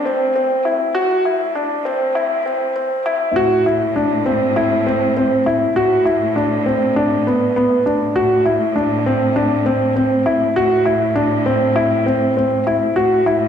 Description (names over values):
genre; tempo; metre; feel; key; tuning
piano and strings electronica; 100 BPM; 4/4; straight; A dorian; A4 = 439 Hz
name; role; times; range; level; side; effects
warm symphonic cello section; bass; 0.0-13.5 s; A2; -23 LUFS; right 2 dB; tube saturation
dark grand piano; riff; 0.1-13.5 s; B3 to F#4; -15 LUFS; left 1 dB; tape echo
room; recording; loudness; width
wet recital hall reverb, RT60 1.4 s; high-pass filter; -14 LUFS; side -8 dB against mid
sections
0.0-3.4 A section; 3.4-13.5 B section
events
build-up 0.0-3.4; filter sweep 0.0-3.4; drop 3.4-13.5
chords
0.0 Am; 5.8 Asus4; 8.2 Am